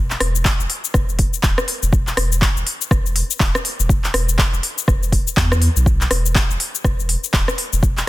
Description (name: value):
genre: afro house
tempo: 122 BPM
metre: 4/4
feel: swing 59% on 16ths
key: unclear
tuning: A4 = 440 Hz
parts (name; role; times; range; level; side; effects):
- warm sub bass; bass; 0.0-8.0 s; D1 to E2; -20 LUFS; equal; sidechain pumping
- deep house drum kit; drums; 0.1-8.1 s; cabasa, handclaps, hi-hat, rim click; -20 LUFS; left 1 dB; none
- electronic kick drum; drums; 0.5-7.9 s; none; -17 LUFS; equal; none
room: digital ambience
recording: dense, heavily limited modern master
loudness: -16 LUFS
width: side -17 dB against mid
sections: 0.0-8.1 A section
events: none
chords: none